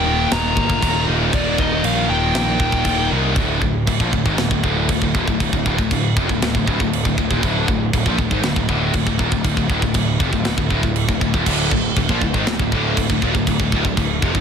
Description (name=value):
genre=heavy metal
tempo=118 BPM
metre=4/4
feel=straight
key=D phrygian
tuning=A4 = 439 Hz
part: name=high-gain lead guitar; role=melody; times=0.0-3.1 s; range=D5 to Bb5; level=-23 LUFS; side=left 2 dB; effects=distortion, ping-pong delay
part: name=heavy high-gain guitar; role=riff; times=0.0-14.4 s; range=D2 to F3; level=-23 LUFS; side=left 14 dB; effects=distortion
part: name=high-gain distorted guitar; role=riff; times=0.0-14.4 s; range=D2 to F3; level=-23 LUFS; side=right 11 dB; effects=distortion
part: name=high-gain distorted guitar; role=riff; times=0.0-3.4, 11.5-14.4 s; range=D2 to F3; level=-24 LUFS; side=equal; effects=distortion
part: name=fuzz picked electric bass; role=bass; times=0.0-14.4 s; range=D1 to C2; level=-23 LUFS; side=equal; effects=overdrive
part: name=tight metal drum kit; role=drums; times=0.3-14.4 s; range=china cymbal, crash cymbal, kick drum, snare drum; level=-21 LUFS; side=equal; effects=none
room=little or no reverb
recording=dense, heavily limited modern master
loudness=-16 LUFS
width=side -7 dB against mid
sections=0.0-3.4 A section; 3.4-14.4 B section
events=none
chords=0.0 Eb; 3.4 Dm